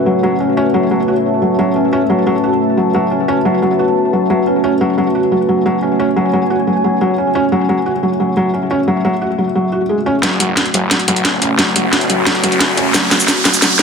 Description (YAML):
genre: dark technical drum and bass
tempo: 177 BPM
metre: 4/4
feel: straight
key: F# minor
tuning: A4 = 441 Hz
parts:
  - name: deep dark ambient pad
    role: sustained chords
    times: 0.0-13.8 s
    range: A3 to E5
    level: -18 LUFS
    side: equal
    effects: chorus, built-in reverb
  - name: deep dark ambient pad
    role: texture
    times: 0.0-13.8 s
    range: F#4 to A5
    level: -19 LUFS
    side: right 1 dB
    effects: chorus, built-in reverb
  - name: felt-muted upright piano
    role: arpeggios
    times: 0.1-13.8 s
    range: F#3 to F#4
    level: -16 LUFS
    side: left 1 dB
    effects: low-pass filter, ping-pong delay
  - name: snarling distorted saw bass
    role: bass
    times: 10.2-13.6 s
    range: E1 to A1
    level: -20 LUFS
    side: equal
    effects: distortion, tube saturation, high-pass filter
  - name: drum and bass drum kit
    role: drums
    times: 10.2-13.8 s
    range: hi-hat, shaker, snare drum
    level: -13 LUFS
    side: equal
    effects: none
  - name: riser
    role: sound effects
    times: 11.2-13.8 s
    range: none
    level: -20 LUFS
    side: right 1 dB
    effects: none
room: light reverb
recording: dense, heavily limited modern master, high-pass filter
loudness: -12 LUFS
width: side -5 dB against mid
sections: 0.0-10.2 A section; 10.2-13.8 B section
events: build-up 10.2-13.8; drum fill 10.2-13.8; riser 11.2-13.8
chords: 0.0 F#m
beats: 0.06 0.40 | 0.74 1.08 1.42 1.76 | 2.10 2.44 2.77 3.11 | 3.45 3.79 4.13 4.47 | 4.81 5.15 5.49 5.83 | 6.16 6.50 6.84 7.18 | 7.52 7.86 8.20 8.54 | 8.88 9.21 9.55 9.89 | 10.23 10.57 10.91 11.25 | 11.59 11.93 12.27 12.61 | 12.94 13.28 13.62